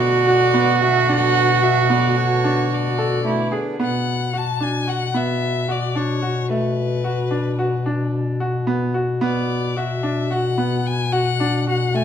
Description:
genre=contemporary instrumental, chamber music in an uneven meter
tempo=110 BPM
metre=5/4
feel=straight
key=B dorian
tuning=A4 = 439 Hz
part: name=rich violin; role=melody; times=0.0-12.0 s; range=B4 to A5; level=-26 LUFS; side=left 7 dB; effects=none
part: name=rich cello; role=second line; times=0.0-3.8 s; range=D4 to F#4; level=-18 LUFS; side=right 8 dB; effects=none
part: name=hand-pumped harmonium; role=sustained chords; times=0.0-3.8 s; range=D3 to B3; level=-30 LUFS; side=right 1 dB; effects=none
part: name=bright grand piano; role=arpeggios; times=0.0-12.0 s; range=A3 to A4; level=-23 LUFS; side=right 1 dB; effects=none
part: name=breathy bass clarinet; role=bass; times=0.0-12.0 s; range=B2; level=-22 LUFS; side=left 3 dB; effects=none
room=moderate recital hall reverb, RT60 1.4 s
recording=none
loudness=-17 LUFS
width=side -8 dB against mid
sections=0.0-3.8 A section; 3.8-12.0 B section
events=none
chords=0.0 Bm7; 3.8 Bm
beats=0.01 0.55 | 1.09 1.64 2.18 2.72 3.26 | 3.80 4.35 4.89 5.43 5.97 | 6.52 7.06 7.60 8.15 8.69 | 9.23 9.78 10.32 10.86 11.41 | 11.95

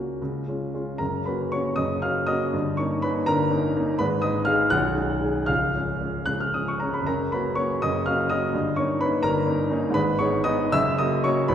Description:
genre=classical, romantic character piece for solo piano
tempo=73-86 BPM (dotted quarters)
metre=6/8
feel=rubato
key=F# major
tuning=A4 = 440 Hz
part: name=warm baby grand piano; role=solo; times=0.0-11.5 s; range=B0 to F#6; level=-22 LUFS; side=equal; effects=none
room=wet concert hall reverb, RT60 2.1 s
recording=recorded in a church or concert hall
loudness=-22 LUFS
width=side -9 dB against mid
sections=0.0-1.0 A section; 1.0-11.5 B section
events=none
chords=0.2 C#; 1.0 F#; 2.5 D#7/G; 4.0 G#m; 4.7 G#m/B; 5.5 C#; 7.1 F#; 8.5 D#7/G; 9.9 G#m; 10.7 F#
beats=0.20 | 1.00 1.78 | 2.53 3.27 | 3.99 4.72 | 5.50 6.28 | 7.06 7.81 | 8.53 9.23 | 9.95 10.71 | 11.50

